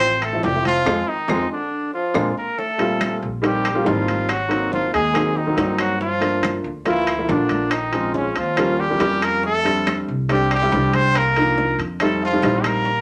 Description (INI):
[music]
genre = Afro-Cuban jazz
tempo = 140 BPM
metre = 4/4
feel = straight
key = unclear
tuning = A4 = 440 Hz
[part]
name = clear trumpet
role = melody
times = 0.0-13.0 s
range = Db4 to C5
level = -24 LUFS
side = equal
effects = none
[part]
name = growling trombone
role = second line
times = 0.0-13.0 s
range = Db3 to C4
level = -30 LUFS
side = equal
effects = none
[part]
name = warm upright piano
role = accompaniment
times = 0.0-12.9 s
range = Bb2 to F4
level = -25 LUFS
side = equal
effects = none
[part]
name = upright bass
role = bass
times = 0.0-13.0 s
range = F1 to G2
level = -29 LUFS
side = equal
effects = none
[part]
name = bongos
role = percussion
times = 0.0-13.0 s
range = none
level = -35 LUFS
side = equal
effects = none
[part]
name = congas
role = percussion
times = 0.0-13.0 s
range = none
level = -35 LUFS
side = equal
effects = none
[part]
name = timbales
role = percussion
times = 0.0-12.9 s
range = none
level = -30 LUFS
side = equal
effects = none
[part]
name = claves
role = percussion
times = 0.2-12.9 s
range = none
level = -36 LUFS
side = equal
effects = none
[sound]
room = wet studio reverb, RT60 0.5 s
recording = none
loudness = -20 LUFS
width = mono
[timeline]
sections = 0.0-2.6 A section; 2.6-13.0 B section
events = band accent 0.9-2.6; drum fill 1.9-2.6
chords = 0.0 Dm7 (rootless); 0.9 Fm7; 1.7 Bb7; 2.6 Eb69; 4.3 G#9; 6.0 Gm9; 7.7 Bbm7; 8.6 Eb9; 9.4 F6; 11.1 Cm11; 12.0 F7